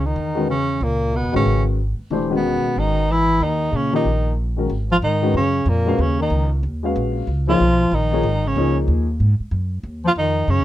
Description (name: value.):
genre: modal jazz.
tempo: 186 BPM.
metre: 4/4.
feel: swing 62% on 8ths.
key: G# dorian from 4.7 s.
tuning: A4 = 438 Hz.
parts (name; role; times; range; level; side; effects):
breathy tenor saxophone; melody; 0.0-10.6 s; A#3 to E#4; -21 LUFS; right 2 dB; none.
warm bass clarinet; second line; 0.0-10.6 s; Bb2 to E#3; -23 LUFS; left 4 dB; none.
upright bass; bass; 0.0-10.6 s; Fb1 to Bb2; -21 LUFS; equal; none.
warm upright piano; accompaniment; 0.3-9.1 s; Eb3 to E#5; -22 LUFS; left 3 dB; none.
room: light reverb.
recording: close, detailed microphones.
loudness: -17 LUFS.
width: side -14 dB against mid.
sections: 0.0-4.7 A section; 4.7-10.6 B section.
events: none.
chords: 0.0 Dbm9; 3.4 Eb7(no3); 4.7 G#9sus4.